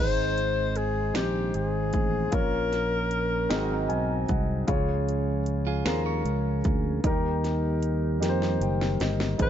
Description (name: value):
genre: slow gospel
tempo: 51 BPM (dotted quarters)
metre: 6/8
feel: straight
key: Ab major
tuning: A4 = 444 Hz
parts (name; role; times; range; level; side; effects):
- breathy alto saxophone; melody; 0.0-4.3, 9.4-9.5 s; G4 to C5; -29 LUFS; left 4 dB; none
- warm grand piano; accompaniment; 0.0-9.5 s; Ab2 to Ab5; -30 LUFS; left 1 dB; none
- mellow tonewheel organ; sustained chords; 0.0-9.5 s; Eb3 to C5; -34 LUFS; right 3 dB; slow rotary speaker
- fingered electric bass; bass; 0.0-9.5 s; Gb1 to F2; -28 LUFS; equal; none
- house drum kit; drums; 0.4-9.5 s; hi-hat, kick drum, snare drum; -29 LUFS; equal; none
- clean electric guitar; second line; 5.7-7.0 s; F4 to Db5; -36 LUFS; right 8 dB; none
room: light reverb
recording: nothing above 7.6 kHz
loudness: -24 LUFS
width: side -10 dB against mid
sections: 0.0-9.5 A section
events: grand piano fill 3.5-4.7, 8.2-9.4; drum fill 8.2-9.4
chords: 0.0 Ab; 2.3 Bbm; 3.5 Ab7; 4.7 Db; 7.0 Eb